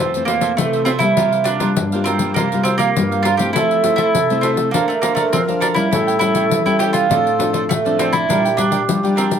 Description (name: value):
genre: samba and choro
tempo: 101 BPM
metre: 4/4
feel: straight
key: F major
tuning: A4 = 440 Hz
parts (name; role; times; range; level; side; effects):
- mandolin; melody; 0.0-9.3 s; A3 to G4; -18 LUFS; right 4 dB; plate reverb
- cavaquinho; accompaniment; 0.0-9.4 s; D4 to Bb5; -25 LUFS; right 7 dB; none
- nylon-string guitar; accompaniment; 0.0-9.4 s; F2 to C5; -20 LUFS; left 3 dB; none
- pandeiro; percussion; 0.1-9.4 s; none; -23 LUFS; left 5 dB; none
- mellow baroque flute; second line; 3.5-9.4 s; G4 to Bb4; -21 LUFS; left 2 dB; none
room: moderate small room ambience, RT60 0.5 s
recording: none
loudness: -14 LUFS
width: side -8 dB against mid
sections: 0.0-9.4 A section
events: none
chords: 0.0 Fmaj7; 1.2 C7sus4; 3.5 Fmaj7; 4.7 Bbmaj9; 5.9 A7; 7.1 Dm7/A; 8.3 Bb6